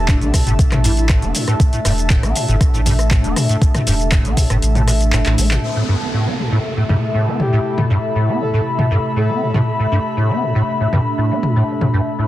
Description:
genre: acid house.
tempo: 119 BPM.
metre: 4/4.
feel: straight.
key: A minor.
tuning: A4 = 436 Hz.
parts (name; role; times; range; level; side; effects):
warbly tape-like pad; sustained chords; 0.0-12.3 s; C3 to E4; -24 LUFS; right 1 dB; chorus, built-in reverb, phaser, sidechain pumping.
warm sub bass; bass; 0.0-5.6 s; E1 to A1; -18 LUFS; equal; tube saturation, sidechain pumping.
airy breathy pad; texture; 0.0-12.3 s; A4 to B5; -24 LUFS; left 2 dB; chorus, sidechain pumping.
breathy flute-like synth lead; melody; 0.1-1.1, 7.4-9.5 s; D4 to A4; -27 LUFS; left 2 dB; chorus, analog delay.
liquid acid bass; riff; 0.1-12.3 s; G2 to C4; -19 LUFS; equal; tube saturation, ensemble chorus, sidechain pumping, tape echo.
electro analog drum machine; drums; 0.1-11.9 s; handclaps, hi-hat, rim click, shaker, toms; -21 LUFS; left 1 dB; none.
electronic kick drum; drums; 0.1-4.5 s; none; -14 LUFS; equal; overdrive.
downlifter; sound effects; 5.6-9.7 s; none; -28 LUFS; right 1 dB; none.
room: moderate studio reverb, RT60 0.6 s.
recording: dense, heavily limited modern master.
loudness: -14 LUFS.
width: side -14 dB against mid.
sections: 0.0-5.6 A section; 5.6-12.3 B section.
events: kick drops out 4.6-5.6; drum fill 5.3-5.6.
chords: 0.0 Am.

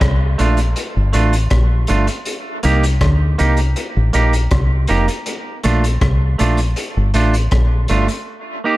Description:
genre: dub reggae.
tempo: 80 BPM.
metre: 4/4.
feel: straight.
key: Bb major.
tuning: A4 = 441 Hz.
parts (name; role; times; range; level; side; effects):
deep dub fingered electric bass; bass; 0.0-8.1 s; F1 to D2; -15 LUFS; equal; none.
crunchy breakbeat drum kit; drums; 0.0-8.3 s; hi-hat, kick drum, rim click; -22 LUFS; equal; none.
clean electric guitar; accompaniment; 0.4-8.8 s; A3 to G4; -20 LUFS; right 3 dB; dub echo.
room: light reverb, small room reverb.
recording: dark, warm production.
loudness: -14 LUFS.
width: side -18 dB against mid.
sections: 0.0-8.8 A section.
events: break 8.3-8.8.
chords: 0.0 Bbmaj7; 2.3 Cm7; 5.3 Bbmaj7; 8.3 Eb/Bb.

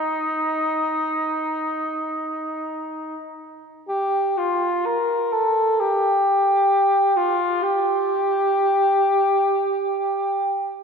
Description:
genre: classical, free, expressive piece for unaccompanied cor anglais.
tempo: free time.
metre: none.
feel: none.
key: unclear.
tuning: A4 = 442 Hz.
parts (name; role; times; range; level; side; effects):
dark cor anglais; solo; 0.0-10.8 s; Eb4 to Bb4; -19 LUFS; equal; none.
room: wet church reverb, RT60 2.8 s.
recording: minimal, uncompressed stereo recording.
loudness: -19 LUFS.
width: side -5 dB against mid.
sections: 0.0-3.9 A section; 3.9-10.8 B section.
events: none.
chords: none.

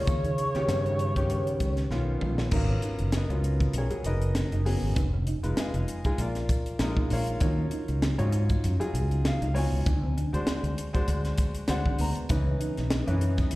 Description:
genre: electric jazz fusion.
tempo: 98 BPM.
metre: 4/4.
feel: swing 55% on 16ths.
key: G# dorian.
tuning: A4 = 437 Hz.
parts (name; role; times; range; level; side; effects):
overdriven synth lead; melody; 0.0-2.2 s; Db5; -31 LUFS; equal; chorus, slapback echo, analog delay.
dark bass clarinet; second line; 0.0-2.2 s; Db3; -33 LUFS; right 1 dB; slapback echo.
clear baby grand piano; accompaniment; 0.0-13.6 s; Eb3 to A#5; -32 LUFS; left 1 dB; slapback echo.
fretless electric bass; bass; 0.0-13.6 s; F1 to Eb3; -27 LUFS; equal; ensemble chorus.
crisp fusion drum kit; drums; 0.1-13.6 s; crash cymbal, hi-hat, kick drum, snare drum, toms; -29 LUFS; equal; none.
mellow electric guitar; stabs; 2.5-12.9 s; B3 to D#4; -37 LUFS; right 2 dB; wide subtle chorus, slapback echo.
ensemble organ-string; sustained chords; 12.3-13.6 s; C#3 to D#4; -38 LUFS; left 2 dB; ensemble chorus.
room: light reverb.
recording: live gig heard through the venue's PA, recital hall reverb.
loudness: -25 LUFS.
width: side -18 dB against mid.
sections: 0.0-2.5 A section; 2.5-13.6 B section.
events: drum fill 1.9-2.5.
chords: 0.1 Eb7b13; 2.5 G#m11; 5.0 Fm7b5; 6.2 A#7; 7.4 D#m9; 9.9 D7#11; 12.3 C#m9.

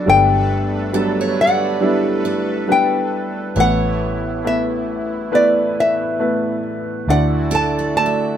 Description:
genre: acoustic folk-pop ballad.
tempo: 69 BPM.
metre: 4/4.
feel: straight.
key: unclear.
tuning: A4 = 440 Hz.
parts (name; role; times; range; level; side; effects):
nylon-string guitar; melody; 0.0-8.4 s; D5 to A5; -18 LUFS; left 2 dB; none.
warm baby grand piano; accompaniment; 0.0-8.4 s; G1 to D5; -20 LUFS; right 1 dB; none.
brassy analog pad; sustained chords; 0.0-8.4 s; D3 to B4; -28 LUFS; right 1 dB; chorus, tremolo.
picked steel-string acoustic guitar; arpeggios; 0.0-8.4 s; F#3 to E5; -26 LUFS; right 4 dB; none.
vintage muted fingered electric bass; bass; 0.0-8.4 s; G1 to D2; -21 LUFS; equal; none.
room: moderate studio reverb, RT60 0.6 s.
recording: band playing live in one room.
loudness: -15 LUFS.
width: side -9 dB against mid.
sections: 0.0-8.4 A section.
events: none.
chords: 0.1 Gadd9; 3.6 Asus2; 7.1 Dadd9.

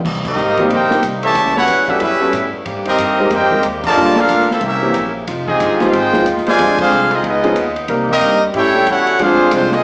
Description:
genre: jazz, big band swing.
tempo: 184 BPM.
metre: 4/4.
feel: swing 62% on 8ths.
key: C minor.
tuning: A4 = 439 Hz.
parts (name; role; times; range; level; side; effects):
warm saxophone section; sustained chords; 0.0-9.8 s; C3 to G4; -23 LUFS; equal; none.
upright bass; bass; 0.0-9.8 s; F1 to A2; -26 LUFS; equal; none.
open jazz drum kit; drums; 0.0-9.8 s; crash cymbal, hi-hat, kick drum, ride cymbal, snare drum; -24 LUFS; equal; none.
brilliant trumpet section; melody; 0.3-9.8 s; Ab3 to A5; -14 LUFS; equal; plate reverb, slapback echo.
warm trombone section; second line; 0.3-9.8 s; C3 to Ab4; -21 LUFS; equal; plate reverb, slapback echo.
warm grand piano; accompaniment; 0.6-9.7 s; Eb3 to Bb4; -18 LUFS; equal; plate reverb.
room: moderate club reverb, RT60 0.7 s.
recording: live gig heard through the venue's PA, club reverb, small speaker sound.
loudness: -12 LUFS.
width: side -35 dB against mid.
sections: 0.0-9.8 A section.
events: band accent 0.2, 3.8, 6.7.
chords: 0.0 Cm7; 1.4 A13; 2.7 Abmaj9; 4.0 Gm9; 4.6 C7b9; 5.3 Fm9; 6.6 Dm7b5; 7.2 Db9; 7.9 Cm7; 8.5 A7; 9.2 Dm7b5.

